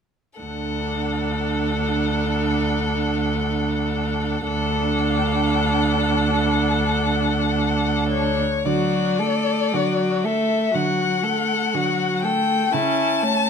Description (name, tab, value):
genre	classical, slow romantic movement for string quartet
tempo	58 BPM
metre	4/4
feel	uneven beats, rubato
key	D major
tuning	A4 = 439 Hz
part	rich violin	melody	0.4-13.5 s	C#5 to A5	-25 LUFS	left 6 dB	none
part	rich violin	second line	0.4-13.5 s	C#4 to A4	-26 LUFS	left 3 dB	none
part	clear viola	accompaniment	0.4-13.5 s	F#3 to D4	-26 LUFS	right 3 dB	none
part	rich cello	bass	0.4-13.5 s	D2 to D3	-24 LUFS	right 3 dB	none
room	moderate stone room reverb, RT60 1.0 s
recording	none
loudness	-19 LUFS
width	side -6 dB against mid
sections	0.4-8.7 A section; 8.7-13.5 B section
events	none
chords	0.4 D; 12.7 A/C#